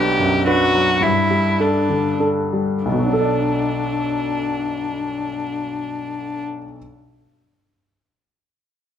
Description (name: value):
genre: neoclassical piano and strings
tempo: 91-114 BPM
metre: 3/4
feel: rubato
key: B minor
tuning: A4 = 440 Hz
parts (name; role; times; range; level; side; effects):
- muted violin; melody; 0.0-6.4 s; D4 to G4; -21 LUFS; left 2 dB; none
- clear grand piano; accompaniment; 0.0-6.8 s; B1 to D5; -20 LUFS; equal; none
room: moderate large studio reverb, RT60 1.3 s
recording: none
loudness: -17 LUFS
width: side -9 dB against mid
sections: 0.0-2.9 A section; 2.9-6.8 B section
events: slowing down 0.0-2.9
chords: 0.0 Bm; 1.0 Gsus2; 2.9 Bm7